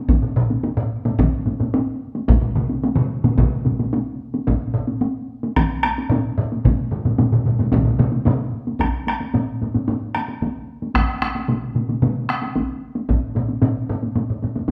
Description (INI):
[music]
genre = japanese traditional, taiko drum ensemble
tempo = 111 BPM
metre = 4/4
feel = straight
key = none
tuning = none
[part]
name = taiko ensemble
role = percussion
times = 0.1-14.7 s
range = none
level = -26 LUFS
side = equal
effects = none
[part]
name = taiko ensemble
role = percussion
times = 0.1-14.7 s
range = none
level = -25 LUFS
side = equal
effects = none
[part]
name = taiko ensemble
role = percussion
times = 0.1-14.7 s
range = none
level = -24 LUFS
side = equal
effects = none
[part]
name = taiko ensemble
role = percussion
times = 2.3-12.4 s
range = none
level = -22 LUFS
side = equal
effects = none
[sound]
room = wet large studio reverb, RT60 1.1 s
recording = band playing live in one room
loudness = -21 LUFS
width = mono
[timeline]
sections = 0.0-8.8 A section; 8.8-14.7 B section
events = speeding up 0.0-14.7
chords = none